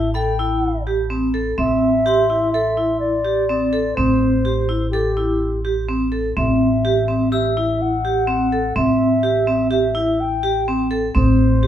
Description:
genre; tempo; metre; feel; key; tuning
contemporary instrumental, chamber music in an uneven meter; 125 BPM; 5/4; straight; A dorian; A4 = 439 Hz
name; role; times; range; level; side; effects
mellow baroque flute; melody; 0.0-11.7 s; G4 to G5; -21 LUFS; left 1 dB; none
vibraphone with hard mallets; arpeggios; 0.0-11.7 s; C4 to A4; -19 LUFS; right 1 dB; none
upright bass; bass; 0.0-11.7 s; A1; -23 LUFS; equal; none
glockenspiel with brass mallets; texture; 0.1-3.6, 7.3-8.9 s; B5 to E6; -34 LUFS; left 4 dB; none
room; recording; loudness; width
moderate studio reverb, RT60 0.8 s; heard from further back in the room; -16 LUFS; side -10 dB against mid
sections
0.0-11.7 A section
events
none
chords
0.0 Am7

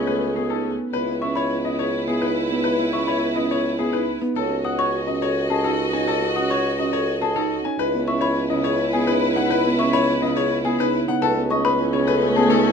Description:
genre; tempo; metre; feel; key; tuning
classical, minimalist pattern music; 105 BPM; 3/4; straight; C# minor; A4 = 440 Hz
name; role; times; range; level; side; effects
bright baby grand piano; melody; 0.0-12.7 s; G#4 to G#5; -25 LUFS; left 10 dB; none
hollow alto flute; second line; 0.0-12.7 s; E4 to G#4; -28 LUFS; right 1 dB; none
Celtic harp; accompaniment; 0.0-12.7 s; C#3 to C#4; -27 LUFS; equal; none
clear symphonic string section; sustained chords; 0.0-12.7 s; A3 to D#5; -28 LUFS; left 1 dB; none
marimba with soft mallets; arpeggios; 0.0-12.7 s; C#4 to C#5; -26 LUFS; right 7 dB; none
mellow bassoon; bass; 0.0-12.7 s; C#2; -26 LUFS; right 2 dB; none
xylophone with soft rubber mallets; arpeggios; 1.2-12.5 s; G#5 to D#6; -26 LUFS; left 1 dB; none
room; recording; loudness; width
light reverb; minimal, uncompressed stereo recording; -19 LUFS; side -6 dB against mid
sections
0.0-12.7 A section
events
none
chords
0.0 Amaj9/C#; 0.9 C#m9; 4.4 D#m7b5/C#; 7.8 C#m9; 11.2 Amaj9/C#

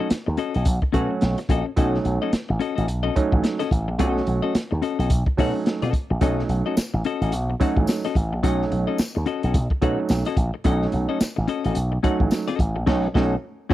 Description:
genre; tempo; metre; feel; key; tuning
funk; 108 BPM; 4/4; swing 60% on 16ths; B mixolydian; A4 = 436 Hz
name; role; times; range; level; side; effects
clean electric guitar; accompaniment; 0.0-13.7 s; C#4 to F#5; -26 LUFS; left 8 dB; none
overdriven clav; stabs; 0.0-13.7 s; F#3 to F#4; -25 LUFS; right 5 dB; none
slap bass with an envelope filter; bass; 0.1-13.7 s; A1 to B2; -23 LUFS; equal; none
crunchy breakbeat drum kit; drums; 0.1-13.7 s; crash cymbal, hi-hat, kick drum, snare drum; -23 LUFS; equal; none
tambourine; percussion; 6.8-12.5 s; none; -38 LUFS; left 3 dB; none
room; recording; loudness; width
small room ambience; dry, close 1970s-style studio recording; -20 LUFS; side -14 dB against mid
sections
0.0-13.7 A section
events
band accent 12.9-13.7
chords
0.0 B9

